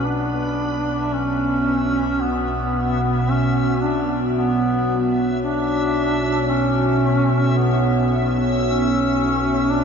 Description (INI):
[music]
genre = dark ambient drone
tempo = 56 BPM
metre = 4/4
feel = straight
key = B minor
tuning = A4 = 440 Hz
[part]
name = warm duduk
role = melody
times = 0.0-9.8 s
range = B3 to D4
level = -21 LUFS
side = equal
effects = shimmer reverb, ping-pong delay
[part]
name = overtone-sweeping drone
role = drone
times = 0.0-9.8 s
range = B1 to B2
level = -22 LUFS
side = right 2 dB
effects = chorus, built-in reverb, phaser
[part]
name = backwards swelling texture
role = texture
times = 0.0-9.8 s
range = E5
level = -30 LUFS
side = left 2 dB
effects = built-in reverb, shimmer reverb
[part]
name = dark analog pad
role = sustained chords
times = 1.3-9.8 s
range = B3 to C#5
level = -25 LUFS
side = left 1 dB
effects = chorus, phaser, shimmer reverb
[sound]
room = wet huge ambient reverb, RT60 7.8 s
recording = nothing above 7.5 kHz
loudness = -17 LUFS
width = side -6 dB against mid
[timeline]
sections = 0.1-9.8 A section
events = none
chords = 0.1 Bm